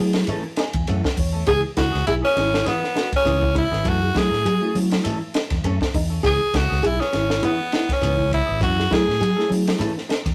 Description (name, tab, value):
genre	afrobeat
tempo	101 BPM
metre	4/4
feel	swing 55% on 16ths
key	C# minor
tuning	A4 = 440 Hz
part	reed electric piano	accompaniment	0.0-9.9 s	A3 to G#5	-30 LUFS	equal	harmonic tremolo
part	flamenco guitar	arpeggios	0.0-10.3 s	C#4 to G#4	-29 LUFS	equal	none
part	fingered electric bass	bass	0.0-10.3 s	G#1 to F#3	-26 LUFS	equal	none
part	semi-hollow electric guitar	stabs	0.1-10.3 s	E3 to A4	-34 LUFS	equal	phaser
part	compact cocktail drum kit	drums	0.1-10.3 s	hi-hat, kick drum, ride cymbal, snare drum	-28 LUFS	equal	none
part	shekere	percussion	0.3-10.3 s	none	-34 LUFS	equal	none
part	raspy tenor saxophone	melody	1.5-9.5 s	B3 to G#4	-24 LUFS	equal	none
room	moderate studio reverb, RT60 0.6 s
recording	rough rehearsal-room recording, warm saturation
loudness	-21 LUFS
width	mono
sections	0.0-10.3 A section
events	reed electric piano fill 0.3-1.5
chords	0.0 F#m7; 1.5 C#m7; 3.9 F#m7; 6.2 C#m7; 8.6 F#m7